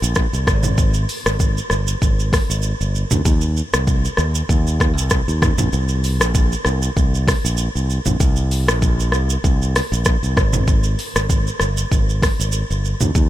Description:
afrobeats; 97 BPM; 4/4; swing 55% on 16ths; A4 = 440 Hz
modern bright fingered electric bass; bass; 0.0-13.3 s; G1 to Eb2; -19 LUFS; equal
deep house drum kit; drums; 0.0-13.3 s; hi-hat, kick drum, rim click, shaker, toms; -18 LUFS; equal
light reverb; -16 LUFS; side -14 dB against mid
0.0-13.3 A section
kick muted 5.7-6.3

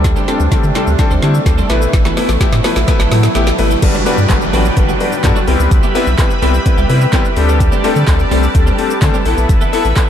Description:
dance-pop; 127 BPM; 4/4; straight; G major; A4 = 440 Hz
clear concert grand piano; accompaniment; 0.0-10.1 s; G3 to B4; -17 LUFS; left 4 dB; sidechain pumping
filtered supersaw swell; sustained chords; 0.0-10.1 s; B2 to B5; -20 LUFS; right 2 dB; sidechain pumping
twelve-string electric guitar; riff; 0.0-9.9 s; E3 to A4; -24 LUFS; right 6 dB; ensemble chorus
saturated sub bass; bass; 0.0-9.9 s; G1 to D3; -14 LUFS; equal; sidechain pumping
deep house drum kit; drums; 0.0-10.1 s; crash cymbal, handclaps, hi-hat, kick drum, shaker, snare drum; -15 LUFS; equal
riser and downlifter; sound effects; 0.4-7.6 s; -25 LUFS; right 1 dB
light reverb; lossy compression artefacts; -10 LUFS; side -9 dB against mid
0.0-3.8 A section; 3.8-10.1 B section
build-up 0.0-3.8; drum fill 0.0-3.8; drop 3.8-10.1
0.0 D7sus4; 1.7 Asus2; 3.8 Gmaj7; 5.5 Cmaj7; 7.4 D7sus4; 9.3 Asus2

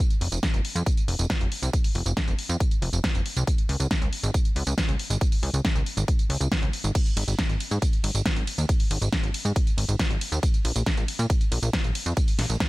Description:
uplifting trance; 138 BPM; 4/4; straight; Ab major; A4 = 437 Hz
big-room dance drum kit; drums; 0.1-12.7 s; crash cymbal, hi-hat, ride cymbal, snare drum, tambourine; -29 LUFS; equal
plucky analog bass; bass; 0.2-12.6 s; F1 to Bb2; -25 LUFS; equal; sidechain pumping
electronic kick drum; drums; 0.4-12.7 s; -24 LUFS; equal
digital ambience; -22 LUFS; side -20 dB against mid
0.0-12.7 A section

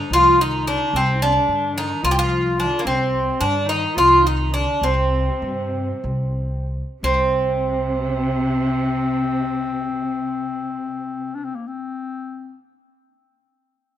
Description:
turkish; 176-220 BPM (eighths); 7/8; straight; C makam ussak; A4 = 440 Hz
Greek bouzouki; melody; 0.0-11.6 s; Bb3 to G4; -18 LUFS; right 1 dB; slapback echo
rich studio cello section; second line; 0.0-11.6 s; C3 to F3; -29 LUFS; right 3 dB
warm clarinet; second line; 0.0-12.6 s; Bb3 to F4; -26 LUFS; left 5 dB
upright bass; bass; 0.1-11.6 s; C2 to G2; -24 LUFS; equal
studio reverb; rough home demo mix; -18 LUFS; side -11 dB against mid
0.0-7.0 A section; 7.0-11.8 B section
slowing down 2.9-7.0

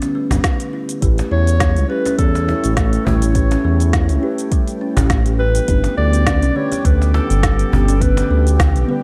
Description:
organic downtempo; 103 BPM; 4/4; swing 55% on 16ths; A mixolydian; A4 = 441 Hz
muted felt-like synth keys; accompaniment; 0.0-9.0 s; D3 to B4; -30 LUFS; equal
kalimba; arpeggios; 0.0-9.0 s; G3 to E4; -26 LUFS; equal; digital delay
organic electronic drum kit; drums; 0.0-8.9 s; hi-hat, shaker, snare drum; -26 LUFS; equal
cajon; percussion; 0.0-8.7 s; -27 LUFS; equal
smooth synth bass; bass; 0.3-8.8 s; G1 to E2; -18 LUFS; equal
electronic kick drum; drums; 0.4-8.7 s; -20 LUFS; equal
warm analog pad; sustained chords; 1.0-9.0 s; D3 to D6; -28 LUFS; equal; chorus, sidechain pumping
mellow clarinet; melody; 1.3-8.6 s; A4 to D5; -26 LUFS; equal; tape echo
light reverb; dark, warm production; -16 LUFS; mono
0.0-9.0 A section
0.0 G; 1.0 A7; 5.7 G

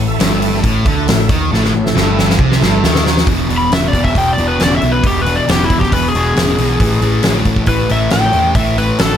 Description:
blues rock power trio and southern rock; 136 BPM; 4/4; straight; A4 = 439 Hz
sludgy distorted guitar; riff; 0.0-9.2 s; E2 to F#3; -16 LUFS; left 1 dB; overdrive
overdriven picked electric bass; bass; 0.0-9.2 s; E1 to E2; -18 LUFS; equal
overdriven tonewheel organ; sustained chords; 0.1-3.1 s; A3 to F#5; -22 LUFS; right 5 dB; slow rotary speaker, chorus vibrato
huge arena drum kit; drums; 0.2-9.1 s; hi-hat, kick drum, snare drum; -16 LUFS; equal
overdriven slide guitar; melody; 3.6-9.2 s; E4 to B5; -17 LUFS; left 1 dB
light reverb; -11 LUFS; side -9 dB against mid
0.0-3.3 A section; 3.3-9.2 B section
drum fill 1.5-3.3; electric slide guitar solo 3.3-9.2
0.0 A5; 3.3 E; 6.8 A5

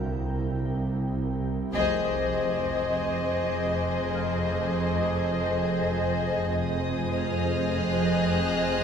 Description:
cinematic, suspense film score; free time; F minor; A4 = 440 Hz
glassy FM pad; sustained chords; 0.0-8.8 s; E4 to Ab5; -33 LUFS; equal; ensemble chorus, built-in reverb
warm studio cello section; bass; 0.0-8.8 s; C2 to F2; -31 LUFS; right 2 dB
warm studio double bass section; bass; 0.0-8.8 s; F1 to C2; -33 LUFS; right 5 dB
swarming drone; drone; 0.0-8.8 s; C2 to F2; -33 LUFS; equal; built-in reverb
celesta; texture; 0.0-8.8 s; Eb5 to F6; -44 LUFS; left 4 dB
warm studio violin section; melody; 1.7-8.8 s; Eb5; -32 LUFS; left 2 dB
warm studio violin section; second line; 1.7-8.8 s; Ab4 to C5; -31 LUFS; left 5 dB
rich studio violin section; texture; 1.7-8.8 s; C6 to Gb6; -38 LUFS; equal
wet scoring stage reverb, RT60 2.0 s; minimal, uncompressed stereo recording; -24 LUFS; side -7 dB against mid
0.0-1.7 A section; 1.7-8.8 B section
band accent 1.7-2.3
0.0 C7; 1.7 Fm7

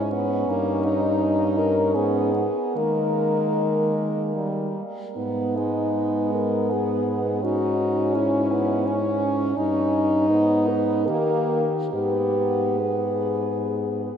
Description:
classical, lyrical piece for horn quartet; 68-86 BPM; 3/4; rubato; G# minor; A4 = 440 Hz
mellow French horn; melody; 0.0-14.1 s; D#4 to B4; -25 LUFS; left 4 dB
clear French horn; second line; 0.0-14.0 s; G#3 to D#4; -26 LUFS; right 4 dB
warm French horn; accompaniment; 0.0-14.1 s; G3 to C#4; -26 LUFS; left 1 dB
mellow French horn; bass; 0.0-14.1 s; G2 to D#3; -28 LUFS; right 3 dB
wet cathedral reverb, RT60 5.6 s; in a vast, echoing space; -20 LUFS; side -8 dB against mid
0.0-14.2 A section
0.5 D#7/G; 1.9 G#m; 2.8 D#sus4; 4.4 D#; 5.2 G#m; 7.4 Emaj13/G#; 9.6 D#7/G; 10.3 G#m; 11.1 D#; 11.9 G#m

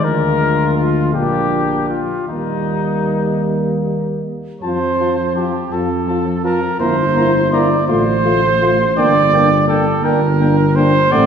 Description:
classical, brass quintet; 50-56 BPM (dotted quarters); 6/8; rubato; Eb major, F major from 4.6 s; A4 = 444 Hz
mellow trumpet; melody; 0.0-11.3 s; Eb4 to C6; -22 LUFS; left 5 dB
mellow trumpet; second line; 0.0-11.3 s; D4 to D5; -18 LUFS; right 3 dB
clear French horn; accompaniment; 0.0-11.3 s; Ab3 to F4; -22 LUFS; left 4 dB
dark euphonium; accompaniment; 0.0-11.3 s; F3 to Bb3; -22 LUFS; right 2 dB
mellow tuba; bass; 0.0-11.3 s; G1 to F2; -19 LUFS; equal
wet concert hall reverb, RT60 2.0 s; heard from further back in the room; -13 LUFS; side -7 dB against mid
0.0-4.6 A section; 4.6-11.3 B section
0.0 Bb7/D; 1.1 Bb; 2.3 Eb; 4.6 F; 6.8 Edim/G; 7.9 F/A; 9.0 Gm

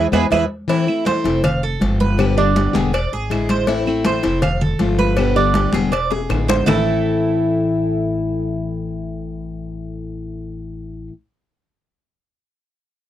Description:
latin, Cuban son and guajira; 160 BPM; 4/4; straight; A minor; A4 = 440 Hz
picked plugged-in steel-string acoustic guitar; accompaniment; 0.0-11.1 s; A2 to G4; -20 LUFS; left 4 dB
Cuban tres; arpeggios; 0.0-11.1 s; A3 to F5; -21 LUFS; right 7 dB
upright bass; bass; 0.0-11.1 s; E1 to E2; -23 LUFS; equal
claves; percussion; 0.1-6.8 s; -30 LUFS; right 9 dB
congas; percussion; 0.1-6.8 s; -22 LUFS; equal
cowbell and bongos; percussion; 0.1-6.8 s; -26 LUFS; left 6 dB
little or no reverb; dry, close 1970s-style studio recording; -16 LUFS; side -12 dB against mid
0.7-6.7 A section; 6.7-9.7 B section
drum fill 0.0-0.7, 6.1-6.7; band accent 0.0-0.7
0.0 E; 0.7 Am; 1.4 F; 2.2 G; 2.9 E7; 3.7 Am; 4.4 F; 5.2 G; 5.9 E7; 6.7 Am

